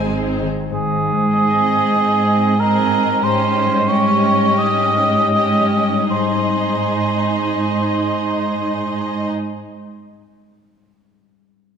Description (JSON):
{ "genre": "classical, slow romantic movement for symphony orchestra", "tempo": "37-49 BPM", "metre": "4/4", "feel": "rubato", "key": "Ab major", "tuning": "A4 = 442 Hz", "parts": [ { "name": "rich symphonic violin section", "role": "melody", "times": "0.0-9.3 s", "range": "Eb5 to Ab5", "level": "-27 LUFS", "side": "left 4 dB", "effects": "none" }, { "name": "rich symphonic violin section", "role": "second line", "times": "0.0-9.3 s", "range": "Eb4 to C5", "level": "-27 LUFS", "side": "left 2 dB", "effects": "none" }, { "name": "rich symphonic viola section", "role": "accompaniment", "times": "0.0-9.3 s", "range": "C4 to Ab4", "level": "-25 LUFS", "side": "right 2 dB", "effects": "none" }, { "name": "concert harp", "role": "arpeggios", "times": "0.0-10.0 s", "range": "Ab2 to C5", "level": "-24 LUFS", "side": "left 6 dB", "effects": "none" }, { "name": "rich symphonic double bass section", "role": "bass", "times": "0.0-0.5 s", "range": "Ab1", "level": "-29 LUFS", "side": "right 2 dB", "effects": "none" }, { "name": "warm symphonic cello section", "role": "bass", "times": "0.0-9.3 s", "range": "Ab2", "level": "-21 LUFS", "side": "right 2 dB", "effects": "none" }, { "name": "mellow cor anglais", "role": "second line", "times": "0.7-9.3 s", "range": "Ab4 to Eb5", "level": "-18 LUFS", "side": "right 2 dB", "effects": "none" } ], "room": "wet scoring stage reverb, RT60 2.0 s", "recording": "minimal, uncompressed stereo recording", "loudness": "-15 LUFS", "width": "side -7 dB against mid", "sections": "0.7-6.1 A section; 6.1-11.7 B section", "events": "slowing down 0.0-6.1", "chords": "0.0 Ab; 3.2 Eb7/Ab; 6.1 Ab", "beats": "| 0.72 1.96 3.23 4.57 | 6.09 7.50 8.91" }